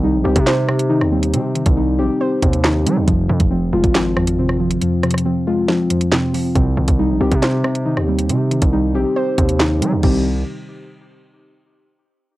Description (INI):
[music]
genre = hip hop, drill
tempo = 138 BPM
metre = 4/4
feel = half-time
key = C minor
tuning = A4 = 440 Hz
[part]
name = soft round pluck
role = accompaniment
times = 0.0-10.2 s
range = F2 to C5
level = -21 LUFS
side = right 2 dB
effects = chorus, cassette tape
[part]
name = muted felt-like synth keys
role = arpeggios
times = 0.0-10.2 s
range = F3 to G4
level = -19 LUFS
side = left 2 dB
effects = chorus, cassette tape, tape echo
[part]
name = distorted 808-style bass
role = bass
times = 0.0-10.4 s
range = F1 to G3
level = -20 LUFS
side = equal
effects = distortion
[part]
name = drill drum kit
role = drums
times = 0.4-10.1 s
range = crash cymbal, handclaps, hi-hat, kick drum, rim click, snare drum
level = -18 LUFS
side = equal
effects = cassette tape
[sound]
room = light reverb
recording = home recording on cassette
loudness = -14 LUFS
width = side -17 dB against mid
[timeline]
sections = 0.0-6.6 A section; 6.6-10.0 B section; 10.0-11.8 C section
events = kick muted 4.8-6.6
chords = 0.0 Cm; 3.1 Fm; 6.6 Cm